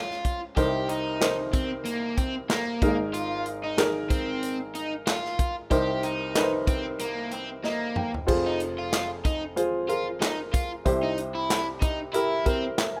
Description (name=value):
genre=piano-driven pop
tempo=93 BPM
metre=4/4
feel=swing 56% on 16ths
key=F harmonic minor from 8.3 s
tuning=A4 = 440 Hz
part: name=warm upright piano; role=accompaniment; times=0.0-13.0 s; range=F1 to Ab5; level=-31 LUFS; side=equal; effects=none
part: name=crunchy overdriven guitar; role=riff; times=0.0-12.6 s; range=Bb3 to G4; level=-33 LUFS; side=equal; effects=none
part: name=natural country drum kit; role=drums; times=0.1-13.0 s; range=crash cymbal, handclaps, hi-hat, kick drum, snare drum, toms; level=-30 LUFS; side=equal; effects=none
room=studio reverb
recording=rough home demo mix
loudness=-27 LUFS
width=mono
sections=0.0-8.3 A section; 8.3-13.0 B section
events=upright piano fill 7.3-8.3, 12.1-13.0; drum fill 7.6-8.3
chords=0.0 Dbmaj7; 0.6 Cm7; 2.8 Absus2; 5.7 Cm7; 8.3 Fm; 10.9 C